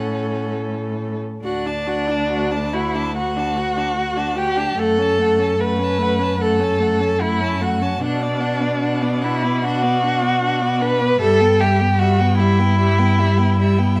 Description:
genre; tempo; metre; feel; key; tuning
classical, slow romantic movement for string quartet; 74 BPM; 4/4; uneven beats, rubato; D major; A4 = 440 Hz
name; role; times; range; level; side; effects
rich violin; melody; 0.0-14.0 s; D5 to A5; -33 LUFS; equal; none
rich violin; second line; 0.0-14.0 s; D4 to B4; -22 LUFS; equal; none
rich viola; accompaniment; 0.0-14.0 s; G3 to F#4; -26 LUFS; equal; none
rich cello; bass; 0.0-14.0 s; D2 to B2; -24 LUFS; equal; none
room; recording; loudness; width
moderate recital hall reverb, RT60 1.4 s; close, detailed microphones; -19 LUFS; mono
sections
0.0-1.4 A section; 1.4-14.0 B section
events
none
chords
0.0 A; 1.4 D; 4.8 F#m; 8.0 Bm; 11.2 Em/G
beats
0.50 | 1.44 2.31 3.16 3.97 | 4.78 5.60 6.41 7.22 | 8.03 8.83 9.64 10.43 | 11.21 12.01 12.79 13.60

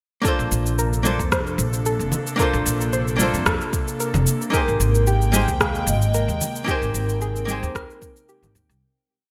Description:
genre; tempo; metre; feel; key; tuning
sunset chillout; 112 BPM; 4/4; swing 54% on 16ths; Bb major; A4 = 440 Hz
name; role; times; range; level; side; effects
archtop guitar, miked and amplified; accompaniment; 0.2-8.8 s; Bb3 to C5; -28 LUFS; equal; delay
airy breathy pad; sustained chords; 0.2-8.8 s; C3 to G5; -32 LUFS; equal; chorus
soft round pluck; arpeggios; 0.2-8.5 s; G4 to C5; -32 LUFS; equal; chorus, delay
electronic kick drum; drums; 0.2-8.1 s; none; -28 LUFS; equal; none
electronic cabasa and rim click; drums; 0.3-8.8 s; none; -29 LUFS; equal; gated reverb
upright bass; bass; 0.4-8.8 s; F1 to F2; -25 LUFS; equal; none
congas; percussion; 1.1-8.5 s; none; -30 LUFS; equal; none
vibraphone with soft mallets; melody; 4.5-8.3 s; Bb4 to G5; -30 LUFS; equal; delay
room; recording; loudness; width
moderate plate reverb, RT60 1.8 s, small room ambience; bright 1980s-style digital production; -21 LUFS; mono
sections
0.2-8.8 groove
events
fade-out 6.0-8.8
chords
0.2 Bbmaj9; 4.5 Abmaj9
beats
| 0.25 0.78 1.32 1.86 | 2.39 2.93 3.46 4.00 | 4.53 5.07 5.61 6.14 | 6.68 7.21 7.75 8.28

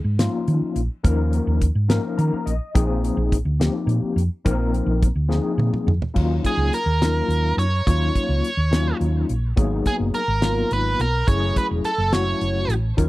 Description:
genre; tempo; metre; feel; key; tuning
electric jazz fusion; 70 BPM (dotted quarters); 6/8; straight; Eb minor from 6.2 s; A4 = 439 Hz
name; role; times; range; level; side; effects
hollow-body short-scale fingered electric bass; bass; 0.0-13.1 s; Fb1 to Eb3; -21 LUFS; equal; none
overdriven tine electric piano; accompaniment; 0.2-13.1 s; F3 to Bb5; -25 LUFS; left 4 dB; fast tremolo, ensemble chorus
damped 70s drum kit; drums; 0.2-13.1 s; crash cymbal, hi-hat, kick drum, snare drum, toms; -21 LUFS; equal; none
biting lead guitar; melody; 6.5-12.7 s; Ab4 to Db5; -24 LUFS; right 2 dB; overdrive
room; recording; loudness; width
little or no reverb; dry, close 1970s-style studio recording; -19 LUFS; side -18 dB against mid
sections
0.0-6.2 A section; 6.2-13.1 B section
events
tine electric piano fill 1.9-2.7; drum fill 5.3-6.2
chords
0.0 Eb9sus4; 2.7 Bb9sus4; 6.2 Ebm9; 9.6 Abm9; 11.3 Gbm9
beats
0.19 | 1.04 1.89 | 2.75 3.60 | 4.45 5.30 | 6.16 7.01 | 7.86 8.71 | 9.57 10.42 | 11.28 12.13 | 12.98

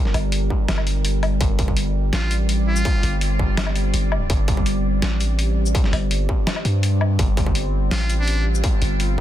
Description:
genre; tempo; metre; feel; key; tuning
half-time drum and bass; 166 BPM; 4/4; half-time; G minor; A4 = 439 Hz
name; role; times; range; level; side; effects
deep dark ambient pad; sustained chords; 0.0-9.2 s; G3 to D5; -26 LUFS; equal; chorus, built-in reverb, vintage 12-bit sampler grit, sidechain pumping
long sustained 808-style bass; bass; 0.1-9.2 s; G1 to G2; -20 LUFS; equal; none
boom bap sampler-style drum kit; drums; 0.1-9.1 s; hi-hat, shaker, snare drum, woodblock; -27 LUFS; left 2 dB; none
electronic kick drum; drums; 0.5-9.2 s; none; -21 LUFS; equal; distortion
trumpet with metal mute; melody; 2.1-3.2, 7.9-8.5 s; D4 to F4; -30 LUFS; equal; vintage 12-bit sampler grit, dub echo
room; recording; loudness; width
digital ambience; dense, heavily limited modern master; -18 LUFS; side -12 dB against mid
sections
0.0-9.2 A section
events
none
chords
0.0 G5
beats
0.32 0.69 1.05 | 1.41 1.77 2.13 2.49 | 2.85 3.22 3.58 3.94 | 4.30 4.66 5.02 5.38 | 5.75 6.11 6.47 6.83 | 7.19 7.55 7.92 8.28 | 8.64 9.00

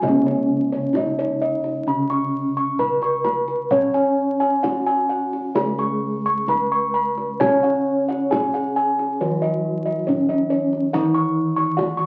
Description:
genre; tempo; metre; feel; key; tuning
Javanese gamelan; 66 BPM; 4/4; uneven beats; C# slendro; A4 = 440 Hz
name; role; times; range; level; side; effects
gamelan-type bronze metallophone; melody; 0.0-12.1 s; C#4 to C#5; -27 LUFS; equal; none
gamelan-type bronze metallophone; accompaniment; 0.0-12.1 s; C#3 to C#4; -30 LUFS; equal; none
gamelan-type bossed gongs; arpeggios; 0.0-12.1 s; C#5 to C#6; -25 LUFS; equal; none
gamelan-type bossed gongs; bass; 0.0-11.9 s; C#2 to C#5; -27 LUFS; equal; none
kendang; percussion; 0.0-12.1 s; none; -31 LUFS; equal; none
room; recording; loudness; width
moderate studio reverb, RT60 0.5 s; very old 78 rpm record, vinyl crackle; -21 LUFS; mono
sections
0.0-12.1 A section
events
none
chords
none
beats
| 0.02 0.94 1.87 2.79 | 3.71 4.64 5.56 6.48 | 7.41 8.32 9.21 10.09 | 10.94 11.78

